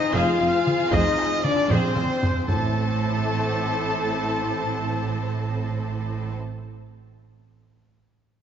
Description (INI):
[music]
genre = cinematic, epic orchestral film score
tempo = 77 BPM (dotted quarters)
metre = 6/8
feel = straight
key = unclear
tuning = A4 = 436 Hz
[part]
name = warm symphonic violin section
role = melody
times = 0.0-6.3 s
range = C5 to A5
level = -34 LUFS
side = left 4 dB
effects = none
[part]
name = rich studio violin section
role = second line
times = 0.0-6.4 s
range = C5 to A5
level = -34 LUFS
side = left 3 dB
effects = none
[part]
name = silver concert flute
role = second line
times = 0.0-6.4 s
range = C5 to A5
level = -32 LUFS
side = left 2 dB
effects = none
[part]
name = dark French horn section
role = sustained chords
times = 0.0-6.3 s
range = A3 to F4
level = -27 LUFS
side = left 4 dB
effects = none
[part]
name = warm symphonic string section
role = sustained chords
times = 0.0-6.3 s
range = C4 to C5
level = -32 LUFS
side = equal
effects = none
[part]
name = clear trumpet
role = stabs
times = 0.0-6.3 s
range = A4 to F5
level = -31 LUFS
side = right 2 dB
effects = none
[part]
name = clear symphonic viola section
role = accompaniment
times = 0.1-6.3 s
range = C4 to C5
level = -34 LUFS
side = right 1 dB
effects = none
[part]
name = dark symphonic double bass section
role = bass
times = 0.1-6.4 s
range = F1 to A1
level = -30 LUFS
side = right 5 dB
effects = none
[part]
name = warm studio cello section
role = bass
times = 0.1-6.4 s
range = F2 to A2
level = -30 LUFS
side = right 3 dB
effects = none
[part]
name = taiko ensemble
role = drums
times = 0.7-2.6 s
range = none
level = -27 LUFS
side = equal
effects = none
[sound]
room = moderate concert hall reverb, RT60 2.4 s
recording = nothing above 7.5 kHz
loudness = -21 LUFS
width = side -8 dB against mid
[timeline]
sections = 0.0-2.5 A section; 2.5-5.6 B section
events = drum fill 1.7-2.5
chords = 0.0 Fm; 2.5 Am